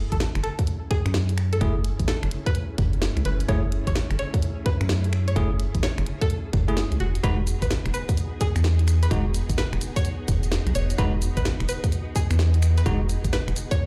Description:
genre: UK garage, two-step garage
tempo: 128 BPM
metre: 4/4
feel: swing 64% on 16ths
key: F# dorian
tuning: A4 = 439 Hz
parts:
  - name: soft string machine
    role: sustained chords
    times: 0.1-13.9 s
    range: A3 to G#4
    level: -39 LUFS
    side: equal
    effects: ensemble chorus, sidechain pumping
  - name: organ-like FM bass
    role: bass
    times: 0.0-13.5 s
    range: E1 to F#2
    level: -25 LUFS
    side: equal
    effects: none
  - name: string-like resonator pluck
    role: melody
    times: 0.1-13.8 s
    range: F#4 to C#5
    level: -35 LUFS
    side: equal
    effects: chorus, phaser, digital delay
  - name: electronic kick drum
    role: drums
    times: 0.1-13.8 s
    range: none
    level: -26 LUFS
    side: equal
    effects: none
  - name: garage drum kit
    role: drums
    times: 0.1-13.8 s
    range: finger snaps, hi-hat, shaker, snare drum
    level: -34 LUFS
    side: equal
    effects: none
  - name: bell-like tine electric piano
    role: stabs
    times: 1.6-13.0 s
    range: G#3 to G#4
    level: -33 LUFS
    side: equal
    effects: digital delay
room: light reverb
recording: played on a big sound system in a bare room, large studio reverb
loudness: -24 LUFS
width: mono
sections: 0.0-13.9 A section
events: none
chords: 0.0 F#m7; 7.0 Emaj7

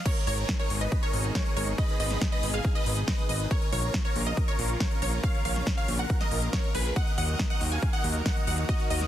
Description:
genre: uplifting trance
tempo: 139 BPM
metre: 4/4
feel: straight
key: G# dorian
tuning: A4 = 440 Hz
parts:
  - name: big supersaw lead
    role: melody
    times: 0.1-9.1 s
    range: F#4 to G#5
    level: -34 LUFS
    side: equal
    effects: sidechain pumping, tape echo
  - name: wide unison pluck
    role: second line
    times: 0.1-9.1 s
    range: B4 to G#5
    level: -36 LUFS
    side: right 1 dB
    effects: sidechain pumping, tape echo
  - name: lush unison pad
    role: sustained chords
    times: 0.3-9.1 s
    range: B2 to A#4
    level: -37 LUFS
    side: equal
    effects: chorus, sidechain pumping
  - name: big-room dance drum kit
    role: drums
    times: 0.1-9.1 s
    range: crash cymbal, hi-hat, snare drum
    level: -34 LUFS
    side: left 1 dB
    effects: overdrive
  - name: electronic kick drum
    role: drums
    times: 0.1-8.8 s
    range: none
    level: -28 LUFS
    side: equal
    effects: overdrive, high-pass filter on kick
  - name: fat analog bass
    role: bass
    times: 0.3-9.1 s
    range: G#1 to D#2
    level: -29 LUFS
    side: equal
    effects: sidechain pumping
room: digital ambience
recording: dense, heavily limited modern master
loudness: -25 LUFS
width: side -12 dB against mid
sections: 0.1-9.1 A section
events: drop 0.1-9.1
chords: 0.1 G#m; 3.5 A#m; 7.0 D#m

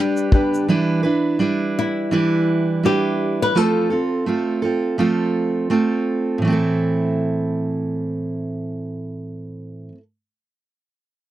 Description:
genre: acoustic pop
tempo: 84 BPM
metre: 4/4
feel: swing 60% on 16ths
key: A minor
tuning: A4 = 440 Hz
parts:
  - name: flamenco guitar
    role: melody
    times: 0.0-5.7 s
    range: D4 to B4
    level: -22 LUFS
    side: left 3 dB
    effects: none
  - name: clear upright piano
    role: accompaniment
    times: 0.0-0.7 s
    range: G3 to B4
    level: -27 LUFS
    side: left 8 dB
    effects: none
  - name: fingerpicked steel-string acoustic guitar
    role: accompaniment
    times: 0.0-10.0 s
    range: A2 to B4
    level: -19 LUFS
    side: right 2 dB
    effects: none
  - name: shaker and kick drum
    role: drums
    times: 0.2-0.7 s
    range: none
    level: -17 LUFS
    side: left 1 dB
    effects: none
room: little or no reverb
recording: dry, close 1970s-style studio recording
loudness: -18 LUFS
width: side -13 dB against mid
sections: 0.0-6.4 A section; 6.4-9.3 B section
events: none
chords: 0.0 G; 0.7 Em7; 3.5 F; 6.4 Am

